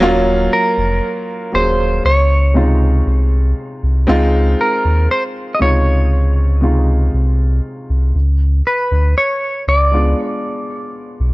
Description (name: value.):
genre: contemporary R&B.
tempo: 59 BPM.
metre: 4/4.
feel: straight.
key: Db major.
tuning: A4 = 440 Hz.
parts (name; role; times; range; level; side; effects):
warm concert grand piano; accompaniment; 0.0-11.3 s; C3 to Ab4; -19 LUFS; equal; none.
sub bass with octave; bass; 0.0-11.3 s; Eb1 to Eb2; -13 LUFS; equal; none.
clean electric guitar; melody; 0.5-11.3 s; Bb4 to Eb5; -17 LUFS; equal; none.
room: studio reverb.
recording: dry, gritty hardware recording, cassette tape.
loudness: -13 LUFS.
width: side -21 dB against mid.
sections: 0.0-4.1 A section; 4.1-11.3 B section.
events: none.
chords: 0.0 Ebm7; 2.0 Dbmaj9; 8.1 Db7b9.